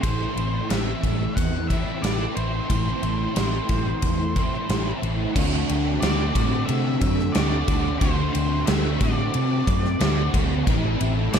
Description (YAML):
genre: rock, shoegaze and dream pop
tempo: 90 BPM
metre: 4/4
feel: straight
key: D mixolydian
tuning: A4 = 440 Hz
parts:
  - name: octave-fuzz lead guitar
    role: melody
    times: 0.0-11.4 s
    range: C5 to F#5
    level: -31 LUFS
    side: right 1 dB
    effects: distortion, slapback echo
  - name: crunchy overdriven guitar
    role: riff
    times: 0.0-11.4 s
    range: A2 to F#4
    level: -25 LUFS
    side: equal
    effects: ensemble chorus
  - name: vintage muted fingered electric bass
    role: bass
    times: 0.0-11.4 s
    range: A1 to C3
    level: -25 LUFS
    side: equal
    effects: none
  - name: gated 80s drum kit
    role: drums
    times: 0.0-11.4 s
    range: crash cymbal, kick drum, ride cymbal, snare drum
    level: -25 LUFS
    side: equal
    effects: none
room: small room ambience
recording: dark, warm production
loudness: -20 LUFS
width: side -7 dB against mid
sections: 0.0-5.4 A section; 5.4-11.4 B section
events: none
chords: 0.0 Am; 5.4 D7; 10.7 Am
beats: | 0.03 0.70 1.36 2.03 | 2.70 3.36 4.03 4.69 | 5.36 6.02 6.69 7.35 | 8.02 8.68 9.34 10.01 | 10.67 11.34